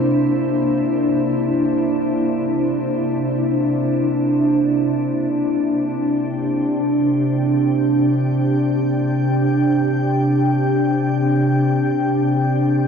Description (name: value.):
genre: ambient.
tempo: free time.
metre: none.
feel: none.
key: C mixolydian.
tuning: A4 = 441 Hz.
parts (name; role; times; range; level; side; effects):
glassy FM pad; solo; 0.0-12.9 s; C3 to G5; -16 LUFS; equal; ensemble chorus, built-in reverb, ping-pong delay.
room: wet cathedral reverb, RT60 6.2 s.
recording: dark, warm production.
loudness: -16 LUFS.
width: side -6 dB against mid.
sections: 0.0-4.9 A section; 4.9-12.9 B section.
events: none.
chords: 0.0 C9; 4.9 Csus2.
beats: free time.